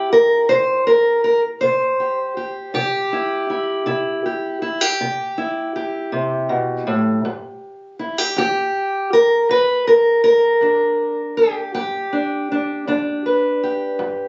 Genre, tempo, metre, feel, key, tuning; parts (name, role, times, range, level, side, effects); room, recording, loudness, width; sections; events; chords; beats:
acoustic country blues, solo or duo; 53 BPM (dotted quarters); 12/8; straight; C major; A4 = 440 Hz
fingerpicked steel-string acoustic guitar; solo; 0.0-14.3 s; G2 to C5; -19 LUFS; equal
moderate studio reverb, RT60 0.5 s; recorded on a phone in the room, club reverb, nothing above 7.7 kHz; -19 LUFS; mono
0.0-14.3 A section
0.0 C; 7.2 G
0.50 1.62 | 2.75 3.87 4.99 6.12 | 7.24 8.37 9.49 10.62 | 11.75 12.88 14.01